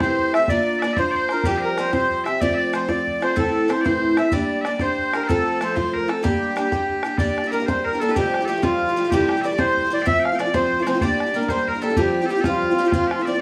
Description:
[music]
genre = celtic folk, Celtic jig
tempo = 125 BPM (dotted quarters)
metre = 6/8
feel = straight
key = G dorian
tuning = A4 = 439 Hz
[part]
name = accordion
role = melody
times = 0.0-13.4 s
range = F4 to F5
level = -24 LUFS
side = equal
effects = light tremolo tuning, slapback echo
[part]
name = loud bright bagpipes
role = second line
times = 0.0-13.4 s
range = F4 to G5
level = -31 LUFS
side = equal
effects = none
[part]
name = picked steel-string acoustic guitar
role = accompaniment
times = 0.0-13.4 s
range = F2 to Bb4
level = -26 LUFS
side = equal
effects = none
[part]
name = bodhran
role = percussion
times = 0.0-13.2 s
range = none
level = -29 LUFS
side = equal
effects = none
[sound]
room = moderate studio reverb, RT60 0.5 s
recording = small room ambience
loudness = -21 LUFS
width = mono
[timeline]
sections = 0.0-7.2 A section; 7.2-13.4 B section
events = none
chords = 0.5 Bb; 1.5 Csus4; 2.4 F; 3.4 Am; 4.3 Gm; 5.3 F; 6.2 Gm; 8.2 Fadd9; 9.1 C6; 10.1 F; 11.0 Gm; 12.0 Csus4/G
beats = 0.02 | 0.50 0.98 | 1.46 1.93 | 2.41 2.89 | 3.37 3.85 | 4.33 4.80 | 5.28 5.76 | 6.24 6.72 | 7.20 7.67 | 8.15 8.63 | 9.11 9.59 | 10.06 10.54 | 11.02 11.50 | 11.98 12.46 | 12.93 13.41

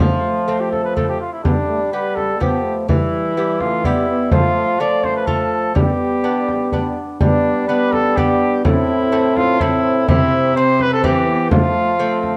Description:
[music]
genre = classical, renaissance-style consort dance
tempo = 125 BPM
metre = 3/4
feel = straight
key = G mixolydian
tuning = A4 = 441 Hz
[part]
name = warm cornet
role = melody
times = 0.0-12.4 s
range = D4 to D5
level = -22 LUFS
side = equal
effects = none
[part]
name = lute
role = accompaniment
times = 0.0-12.4 s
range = A2 to G4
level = -27 LUFS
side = equal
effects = none
[part]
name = warm trombone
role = accompaniment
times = 0.0-12.4 s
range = G3 to C4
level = -24 LUFS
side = equal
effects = none
[part]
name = mellow bassoon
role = bass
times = 0.0-12.4 s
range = A2 to G3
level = -24 LUFS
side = equal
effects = none
[part]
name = frame drum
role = percussion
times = 0.0-12.4 s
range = none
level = -21 LUFS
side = equal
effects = none
[sound]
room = moderate stone room reverb, RT60 1.4 s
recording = dark, warm production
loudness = -17 LUFS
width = mono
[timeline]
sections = 0.0-7.2 A section; 7.2-12.4 A section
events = none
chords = 0.0 F; 1.4 G; 2.9 Em; 4.3 F; 5.8 G; 8.6 Am; 10.1 C; 11.5 F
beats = 0.48 0.96 | 1.45 1.93 2.40 | 2.88 3.36 3.84 | 4.31 4.79 5.27 | 5.75 6.24 6.72 | 7.21 7.69 8.17 | 8.65 9.12 9.60 | 10.08 10.56 11.04 | 11.52 12.00

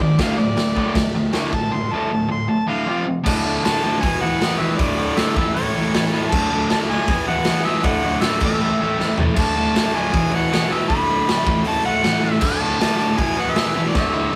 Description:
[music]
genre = garage rock duo or trio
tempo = 157 BPM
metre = 4/4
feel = straight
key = D lydian from 3.3 s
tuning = A4 = 437 Hz
[part]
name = warm harmonica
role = melody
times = 0.0-14.4 s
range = C#5 to C6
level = -26 LUFS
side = equal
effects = overdrive, slapback echo
[part]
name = biting overdriven guitar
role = riff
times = 0.0-14.4 s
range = D2 to A3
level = -22 LUFS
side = equal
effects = none
[part]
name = raw garage drum kit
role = drums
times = 0.0-14.4 s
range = crash cymbal, hi-hat, kick drum, snare drum, toms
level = -24 LUFS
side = equal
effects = none
[sound]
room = moderate small room reverb, RT60 0.5 s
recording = rough rehearsal-room recording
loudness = -19 LUFS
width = mono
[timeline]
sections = 0.0-3.3 A section; 3.3-14.4 B section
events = harmonica solo 0.0-3.3; drum fill 9.0-9.4, 14.0-14.4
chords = 0.2 D5; 2.9 F5; 3.3 D5; 4.0 E5; 4.8 D5; 5.4 A; 6.3 D5; 7.1 E5; 7.8 D; 8.4 A5; 9.4 D5; 10.1 E5; 10.9 D5; 11.5 A5; 12.4 D5; 13.2 E5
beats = | 0.19 0.57 0.95 1.34 | 1.72 2.11 2.49 2.87 | 3.26 3.64 4.02 4.40 | 4.79 5.17 5.55 5.93 | 6.31 6.70 7.08 7.46 | 7.84 8.22 8.61 8.99 | 9.37 9.75 10.13 10.52 | 10.90 11.28 11.66 12.04 | 12.43 12.81 13.19 13.57 | 13.96 14.34

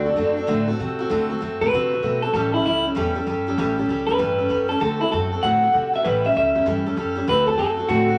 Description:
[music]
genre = rockabilly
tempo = 194 BPM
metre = 4/4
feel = swing 64% on 8ths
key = D mixolydian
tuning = A4 = 440 Hz
[part]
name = electric guitar through a small old amp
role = melody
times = 0.0-8.2 s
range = D4 to F#5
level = -22 LUFS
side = equal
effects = none
[part]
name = picked steel-string acoustic guitar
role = accompaniment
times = 0.0-8.2 s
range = A2 to A4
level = -26 LUFS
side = equal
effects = none
[part]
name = upright bass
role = bass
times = 0.0-8.1 s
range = A1 to C3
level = -30 LUFS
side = equal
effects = none
[sound]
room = moderate large studio reverb, RT60 1.2 s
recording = vinyl crackle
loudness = -21 LUFS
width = mono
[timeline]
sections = 0.0-7.3 A section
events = none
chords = 0.0 D7; 2.3 A7; 4.8 D7; 6.0 A7; 7.3 D7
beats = 0.18 0.49 0.80 | 1.11 1.42 1.72 2.03 | 2.34 2.65 2.96 3.27 | 3.58 3.89 4.20 4.50 | 4.81 5.12 5.43 5.74 | 6.05 6.36 6.66 6.97 | 7.28 7.59 7.90

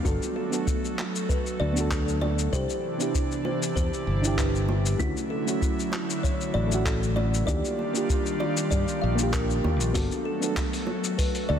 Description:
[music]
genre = sunset chillout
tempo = 97 BPM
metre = 4/4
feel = swing 53% on 16ths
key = G major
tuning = A4 = 440 Hz
[part]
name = mellow FM electric piano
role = accompaniment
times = 0.0-11.6 s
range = A3 to A4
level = -30 LUFS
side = moving between left 4 dB and right 3 dB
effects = chorus, auto-pan, tape echo
[part]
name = airy breathy pad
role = sustained chords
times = 0.0-11.6 s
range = C3 to F4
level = -32 LUFS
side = right 2 dB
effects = chorus
[part]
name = kalimba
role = arpeggios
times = 0.0-11.6 s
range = E4 to F5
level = -34 LUFS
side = left 2 dB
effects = tape echo
[part]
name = fingered electric bass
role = bass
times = 0.1-11.6 s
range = G1 to G2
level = -26 LUFS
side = equal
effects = none
[part]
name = dusty soul sampler-style drum kit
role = drums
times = 0.1-11.5 s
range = handclaps, hi-hat, shaker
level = -34 LUFS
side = left 3 dB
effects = none
[part]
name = electronic kick drum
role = drums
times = 0.1-11.3 s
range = none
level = -28 LUFS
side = equal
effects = none
[part]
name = bongos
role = percussion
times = 1.0-11.0 s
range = none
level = -37 LUFS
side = right 4 dB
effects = none
[sound]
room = moderate lush hall reverb, RT60 2.6 s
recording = dense, heavily limited modern master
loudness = -24 LUFS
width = side -8 dB against mid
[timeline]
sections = 0.0-9.9 A section; 9.9-11.6 B section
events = none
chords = 0.1 Gmaj9 (rootless); 2.5 Cmaj9; 5.0 Dmaj9; 7.5 Ebmaj9; 9.9 Gmaj9 (rootless)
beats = | 0.05 0.67 1.29 1.91 | 2.53 3.15 3.76 4.38 | 5.00 5.62 6.24 6.86 | 7.47 8.09 8.71 9.33 | 9.95 10.57 11.19

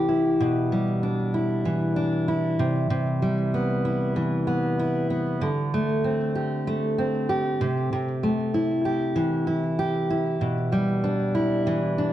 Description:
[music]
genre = pop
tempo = 96 BPM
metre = 4/4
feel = swing 55% on 16ths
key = E minor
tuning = A4 = 436 Hz
[part]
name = fingerpicked steel-string acoustic guitar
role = solo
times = 0.0-12.1 s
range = B2 to G4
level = -22 LUFS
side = equal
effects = ping-pong delay
[sound]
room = moderate studio reverb, RT60 0.8 s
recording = worn, warbling old tape, cassette tape, warbly pitch drift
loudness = -22 LUFS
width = side -12 dB against mid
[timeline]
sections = 0.0-12.1 A section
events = none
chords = 0.4 Em7/B; 2.6 Cmaj7; 5.4 D7sus4; 7.6 Am7/C; 10.4 Em7/B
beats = | 0.41 1.03 1.66 2.29 | 2.91 3.54 4.16 4.79 | 5.42 6.04 6.67 7.29 | 7.92 8.54 9.17 9.79 | 10.42 11.04 11.67

